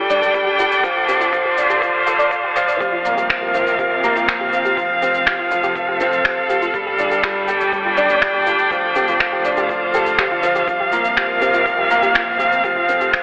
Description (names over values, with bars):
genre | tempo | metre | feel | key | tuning
piano and strings electronica | 122 BPM | 4/4 | straight | unclear | A4 = 440 Hz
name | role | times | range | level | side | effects
warm string quartet | sustained chords | 0.0-13.2 s | C3 to G5 | -17 LUFS | equal | sidechain pumping
soft round pluck | arpeggios | 0.0-13.1 s | F4 to D5 | -26 LUFS | equal | analog chorus, cassette tape, sidechain pumping, tape echo
warm upright piano | riff | 0.0-13.2 s | F3 to A4 | -19 LUFS | equal | tape echo
organic electronic drum kit | drums | 0.1-13.2 s | finger snaps, shaker, toms | -20 LUFS | equal | high-pass filter on perc, high-pass filter on toms, high-pass filter on snare, high-pass filter on room
electronic kick drum | drums | 0.3-13.2 s | none | -30 LUFS | equal | none
warm studio double bass section | bass | 2.8-13.2 s | F1 to D2 | -36 LUFS | equal | sidechain pumping
room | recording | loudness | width
moderate echo chamber reverb, RT60 1.5 s, small room reverb | high-pass filter, telephone sound | -14 LUFS | side -31 dB against mid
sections
0.0-2.8 A section; 2.8-13.2 B section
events
build-up 0.0-2.8; filter sweep on synth arpeggio sound 0.0-2.8; drop 2.8-13.2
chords
0.0 Gsus2; 0.8 Dm7; 2.8 C7sus4; 4.8 F; 6.7 Gsus2; 8.7 Dm7; 10.7 C7sus4; 12.6 F